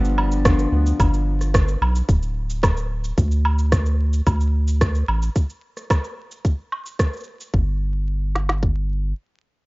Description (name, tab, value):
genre	folktronica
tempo	110 BPM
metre	4/4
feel	straight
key	unclear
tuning	A4 = 441 Hz
part	picked twelve-string acoustic guitar	arpeggios	0.0-1.5 s	G2 to D4	-25 LUFS	left 2 dB	vintage 12-bit sampler grit, low-pass filter, tape echo
part	round analog bass	bass	0.0-9.1 s	D1 to D2	-20 LUFS	equal	none
part	electronic cabasa, woodblock and rim click	drums	0.0-7.5 s	none	-25 LUFS	right 1 dB	none
part	organic electronic drum kit	drums	0.5-8.8 s	kick drum, snare drum	-19 LUFS	equal	none
room	little or no reverb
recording	rough home demo mix, vinyl crackle, nothing above 7.5 kHz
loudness	-18 LUFS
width	side -24 dB against mid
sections	0.0-7.5 A section; 7.5-9.7 B section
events	none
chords	0.0 G7; 3.2 D5; 7.5 N.C.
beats	0.45 | 0.99 1.54 2.08 2.63 | 3.17 3.72 4.26 4.81 | 5.36 5.90 6.45 6.99 | 7.54 8.08 8.63